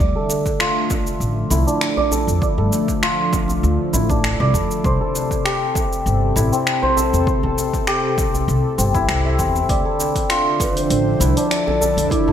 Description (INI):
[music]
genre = organic downtempo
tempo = 99 BPM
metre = 4/4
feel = swing 53% on 16ths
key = D minor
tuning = A4 = 440 Hz
[part]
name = warm analog pad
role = sustained chords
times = 0.0-12.3 s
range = C3 to E5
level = -23 LUFS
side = equal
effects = chorus, sidechain pumping
[part]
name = santur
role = arpeggios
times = 0.0-12.3 s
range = C4 to E5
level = -21 LUFS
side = equal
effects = low-pass filter, digital delay
[part]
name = upright bass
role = bass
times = 0.0-12.3 s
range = G1 to G2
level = -20 LUFS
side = equal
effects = sidechain pumping
[part]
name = deep house drum kit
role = drums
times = 0.0-12.2 s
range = finger snaps, hi-hat, shaker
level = -25 LUFS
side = equal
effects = overdrive, studio reverb, gated reverb
[part]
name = djembe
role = percussion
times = 0.3-11.9 s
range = none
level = -30 LUFS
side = right 1 dB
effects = none
[part]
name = electronic kick drum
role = drums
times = 0.5-12.2 s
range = none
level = -23 LUFS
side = equal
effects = overdrive, studio reverb
[part]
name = mellow low Native American-style wooden flute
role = melody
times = 10.6-12.3 s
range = E4 to D5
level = -22 LUFS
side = left 1 dB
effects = none
[sound]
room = wet plate reverb, RT60 2.3 s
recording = bright 1980s-style digital production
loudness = -16 LUFS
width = side -9 dB against mid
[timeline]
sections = 0.0-12.3 A section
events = filter sweep on santur 0.0-12.3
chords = 0.0 Dmadd9; 4.8 C6; 9.7 Dmadd9